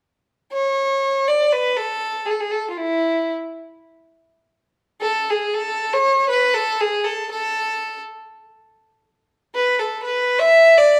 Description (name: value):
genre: turkish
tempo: free time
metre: none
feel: none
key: unclear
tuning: A4 = 441 Hz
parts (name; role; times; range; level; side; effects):
- rich violin; solo; 0.5-11.0 s; E4 to E5; -19 LUFS; equal; none
room: moderate large studio reverb, RT60 1.4 s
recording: band playing live in one room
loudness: -20 LUFS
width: mono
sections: 0.5-5.0 A section; 5.0-11.0 B section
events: none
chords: none